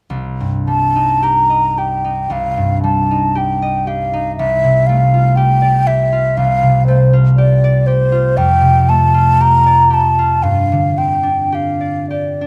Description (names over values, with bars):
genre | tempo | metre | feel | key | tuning
classical, impressionist duo for flute and harp | 48-61 BPM | 4/4 | rubato | C dorian | A4 = 437 Hz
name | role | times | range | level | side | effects
concert harp | accompaniment | 0.1-12.5 s | C2 to Eb5 | -17 LUFS | equal | none
mellow hollow concert flute | melody | 0.7-12.5 s | C5 to Bb5 | -16 LUFS | equal | none
room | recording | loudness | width
moderate recital hall reverb, RT60 1.4 s | close, detailed microphones | -14 LUFS | mono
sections
0.1-12.5 A section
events
none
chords
0.1 Cm; 4.4 Dm7/C; 8.4 F69; 10.4 G7sus4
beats
| 0.11 1.24 2.31 3.36 | 4.37 5.37 6.36 7.37 | 8.36 9.38 10.43 11.52